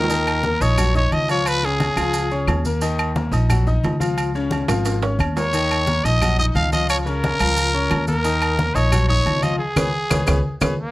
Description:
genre	latin, salsa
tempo	177 BPM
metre	4/4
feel	straight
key	Eb minor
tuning	A4 = 443 Hz
part	growling trumpet	melody	0.0-2.7, 5.4-10.9 s	Bb3 to F5	-21 LUFS	equal	slapback echo
part	bright grand piano	accompaniment	0.0-10.7 s	Db3 to Eb6	-25 LUFS	left 3 dB	none
part	upright bass	bass	0.0-10.7 s	Ab1 to Eb2	-21 LUFS	equal	none
part	timbales and agogo bells	percussion	0.0-10.7 s	none	-28 LUFS	right 4 dB	none
part	congas	percussion	0.1-10.7 s	none	-26 LUFS	left 1 dB	none
part	maracas	percussion	0.1-10.7 s	none	-36 LUFS	right 3 dB	none
part	claves	percussion	0.3-10.7 s	none	-27 LUFS	left 5 dB	none
room	little or no reverb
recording	dry, close 1970s-style studio recording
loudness	-17 LUFS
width	side -18 dB against mid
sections	0.1-10.9 A section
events	drum fill 4.7-5.5, 10.1-10.9; band accent 9.6-10.9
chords	0.1 Ebm7; 1.5 Db; 2.8 Ebm7; 4.2 Db; 5.5 Ebm7; 6.9 Db; 8.2 Ebm7; 9.6 Db5

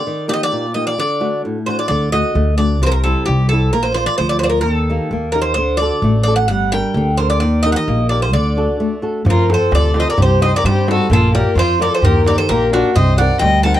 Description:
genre	greek folk, Greek bouzouki band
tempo	130 BPM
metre	2/4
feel	straight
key	unclear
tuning	A4 = 437 Hz
part	Greek bouzouki	melody	0.0-13.8 s	F#4 to A5	-18 LUFS	equal	none
part	flamenco guitar	accompaniment	0.0-13.8 s	A2 to D5	-20 LUFS	equal	none
part	upright bass	bass	1.9-13.7 s	G1 to G2	-17 LUFS	equal	none
part	warm violin	second line	9.3-13.8 s	D4 to F#5	-20 LUFS	left 4 dB	none
part	darbuka	percussion	9.3-13.8 s	none	-18 LUFS	right 1 dB	none
room	light reverb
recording	dry, close 1970s-style studio recording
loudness	-13 LUFS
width	side -12 dB against mid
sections	0.0-1.9 A section; 1.9-9.3 A section; 9.3-13.8 B section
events	break 8.8-9.3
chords	0.0 Eb; 1.0 D; 2.8 C; 3.7 Bb; 4.7 Eb; 5.6 D; 6.5 Gm; 7.4 Eb; 8.3 D; 9.3 F; 10.2 Cm; 11.1 Bb; 12.0 Eb; 13.0 Cm7

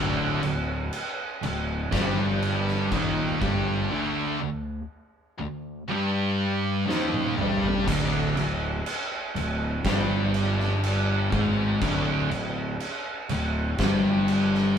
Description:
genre	stoner and doom metal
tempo	61 BPM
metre	4/4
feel	straight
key	unclear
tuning	A4 = 441 Hz
part	thick fuzz guitar	riff	0.0-14.8 s	D2 to G#3	-30 LUFS	left 6 dB	distortion
part	thick fuzz guitar	riff	0.0-14.8 s	D2 to G#3	-27 LUFS	right 3 dB	distortion
part	tight distorted guitar	riff	0.0-7.8 s	D2 to G3	-33 LUFS	left 1 dB	distortion
part	fuzz picked electric bass	bass	0.0-14.8 s	D1 to G#1	-31 LUFS	equal	overdrive
part	oversized low-tuned drum kit	drums	0.4-14.7 s	crash cymbal, kick drum, snare drum, toms	-29 LUFS	equal	none
room	light reverb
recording	band playing live in one room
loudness	-23 LUFS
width	side -8 dB against mid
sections	0.0-7.9 A section; 7.9-14.8 A section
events	drum fill 6.9-7.9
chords	0.0 Ebmaj7/D; 7.9 Ebmaj7/D (rootless)

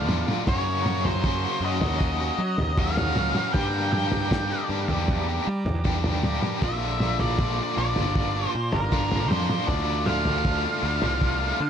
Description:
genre	psychedelic rock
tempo	78 BPM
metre	4/4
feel	straight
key	unclear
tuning	A4 = 442 Hz
part	octave-fuzz lead guitar	melody	0.0-11.7 s	Bb4 to G5	-29 LUFS	equal	distortion, tape echo
part	combo organ	sustained chords	0.0-11.7 s	Db4 to Eb6	-37 LUFS	right 6 dB	none
part	biting overdriven guitar	riff	0.0-11.6 s	Gb2 to G4	-28 LUFS	left 1 dB	tremolo
part	fuzz picked electric bass	bass	0.0-11.7 s	G1 to G3	-28 LUFS	equal	overdrive
part	cloth-damped thuddy drum kit	drums	0.1-11.4 s	kick drum, snare drum, toms	-27 LUFS	equal	none
room	small room ambience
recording	none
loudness	-22 LUFS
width	side -8 dB against mid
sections	0.0-11.7 A section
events	none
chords	0.5 Gb6; 3.5 Gm; 6.6 Bb; 9.7 Dm

